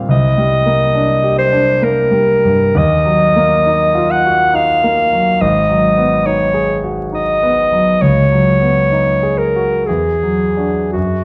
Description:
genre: classical, impressionist duo for clarinet and grand piano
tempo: 55-71 BPM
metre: 3/4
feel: rubato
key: unclear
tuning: A4 = 440 Hz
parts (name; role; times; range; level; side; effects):
- clear concert grand piano; accompaniment; 0.0-11.2 s; G#1 to G#4; -17 LUFS; equal; none
- bright clarinet; melody; 0.1-11.2 s; F#4 to F#5; -16 LUFS; equal; none
room: moderate recital hall reverb, RT60 1.3 s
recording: dark, warm production, vinyl crackle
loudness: -13 LUFS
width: mono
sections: 0.0-11.2 A section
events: none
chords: 0.1 Cm9; 2.8 D#madd9; 5.4 G#m7; 8.0 C#11; 9.9 E9

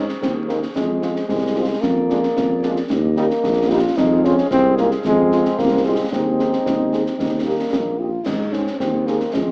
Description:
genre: military-style march for wind band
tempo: 112 BPM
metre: 2/4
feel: straight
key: Ab major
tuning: A4 = 440 Hz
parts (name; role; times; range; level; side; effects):
- warm cornet; melody; 0.0-9.2 s; C5 to Eb5; -42 LUFS; equal; none
- dark woodwind section; second line; 0.0-9.5 s; G4 to F5; -34 LUFS; equal; none
- warm euphonium; second line; 0.0-9.5 s; Ab3 to F4; -20 LUFS; equal; none
- mellow French horn section; accompaniment; 0.0-9.2 s; G3 to Ab4; -25 LUFS; equal; none
- warm trombone section; sustained chords; 0.0-9.5 s; Eb3 to Eb4; -29 LUFS; equal; none
- mellow tuba; bass; 0.0-9.5 s; Bb1 to Ab2; -21 LUFS; equal; none
- concert snare drum, concert bass drum and clash cymbals; drums; 0.1-9.5 s; none; -24 LUFS; equal; none
room: small room ambience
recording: rough home demo mix, vinyl crackle, AM radio sound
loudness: -16 LUFS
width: side -35 dB against mid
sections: 0.0-9.5 A section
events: none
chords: 0.0 Ab; 0.8 Fm; 1.8 Bb7/F; 2.9 Eb; 4.0 Fm; 6.1 Ab/Eb; 7.2 Eb; 8.3 Ab

